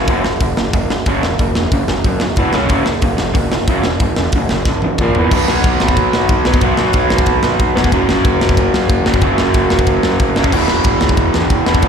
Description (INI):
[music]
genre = punk rock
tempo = 184 BPM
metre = 4/4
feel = straight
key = unclear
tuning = A4 = 440 Hz
[part]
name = raw garage guitar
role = riff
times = 0.0-11.9 s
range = E2 to C#4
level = -15 LUFS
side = right 1 dB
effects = overdrive, slapback echo
[part]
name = fuzz picked electric bass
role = bass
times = 0.0-11.9 s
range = E1 to B2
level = -20 LUFS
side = equal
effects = overdrive
[part]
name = tight metal drum kit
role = drums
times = 0.1-11.9 s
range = crash cymbal, hi-hat, kick drum, ride cymbal, snare drum, toms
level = -16 LUFS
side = equal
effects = none
[sound]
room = studio reverb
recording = live gig heard through the venue's PA, recital hall reverb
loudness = -12 LUFS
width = side -7 dB against mid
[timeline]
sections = 0.0-5.3 A section; 5.3-11.9 B section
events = drum fill 4.7-5.3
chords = 0.0 F#5; 2.4 E5; 2.5 C#5; 2.7 F#5; 5.0 A#5; 5.2 E5; 5.3 B5; 7.9 F#5; 10.5 E5